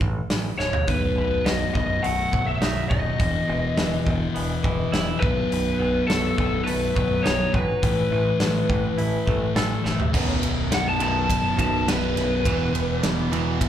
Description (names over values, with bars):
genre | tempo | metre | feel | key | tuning
quiet-loud alternative rock | 104 BPM | 4/4 | straight | B mixolydian | A4 = 439 Hz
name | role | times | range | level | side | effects
growling picked electric bass | bass | 0.0-13.7 s | B0 to A1 | -28 LUFS | right 1 dB | overdrive
big rock drum kit | drums | 0.0-13.7 s | crash cymbal, hi-hat, kick drum, ride cymbal, snare drum, toms | -26 LUFS | equal | none
lead guitar through a small cranked amp | melody | 0.6-13.0 s | A4 to A5 | -26 LUFS | left 2 dB | overdrive, slapback echo
twangy electric guitar | arpeggios | 0.9-13.7 s | B1 to A4 | -29 LUFS | right 4 dB | phaser
thick fuzz guitar | riff | 0.9-13.7 s | B1 to A3 | -27 LUFS | left 6 dB | distortion
cranked stack guitar | riff | 10.1-13.7 s | B1 to E3 | -28 LUFS | right 10 dB | overdrive, phaser
room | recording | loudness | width
small room ambience | live gig heard through the venue's PA, club ambience | -20 LUFS | side -10 dB against mid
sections
0.0-10.1 A section; 10.1-13.7 B section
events
drum fill 0.6, 9.8; lead electric guitar solo 10.1-13.7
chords
0.0 A; 0.9 B7; 3.2 E5; 5.2 B7; 7.8 Asus2; 10.1 B5; 12.4 E5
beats
0.30 | 0.88 1.46 2.04 2.62 | 3.20 3.78 4.36 4.93 | 5.51 6.09 6.67 7.25 | 7.83 8.40 8.98 9.56 | 10.14 10.71 11.29 11.87 | 12.45 13.03 13.60